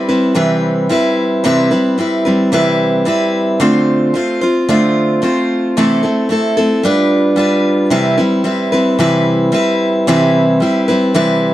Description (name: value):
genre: pop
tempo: 111 BPM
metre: 4/4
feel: swing 55% on 16ths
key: C major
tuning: A4 = 440 Hz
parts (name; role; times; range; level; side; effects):
- picked steel-string acoustic guitar; solo; 0.0-11.5 s; C3 to C5; -11 LUFS; equal; none
room: light reverb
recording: dry, close 1970s-style studio recording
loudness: -11 LUFS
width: side -14 dB against mid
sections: 0.0-7.9 A section; 7.9-11.5 B section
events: none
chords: 0.0 Cmaj7; 3.6 Dm7; 5.8 Am/C; 6.8 G7; 7.9 Cmaj7